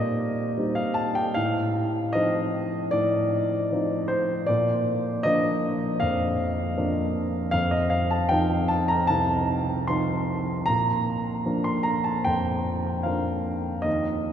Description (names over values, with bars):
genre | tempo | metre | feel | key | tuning
classical, romantic character piece for solo piano | 76 BPM | 4/4 | rubato | Bb major | A4 = 439 Hz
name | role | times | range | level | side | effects
warm grand piano | solo | 0.0-14.3 s | C2 to C6 | -22 LUFS | equal | none
room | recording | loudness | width
wet cathedral reverb, RT60 6.8 s | recorded in a church or concert hall | -22 LUFS | side -9 dB against mid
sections
0.0-14.3 A section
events
none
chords
0.0 Cm7/Bb; 1.4 F7/A; 4.5 Bb; 7.5 F7; 10.7 Bb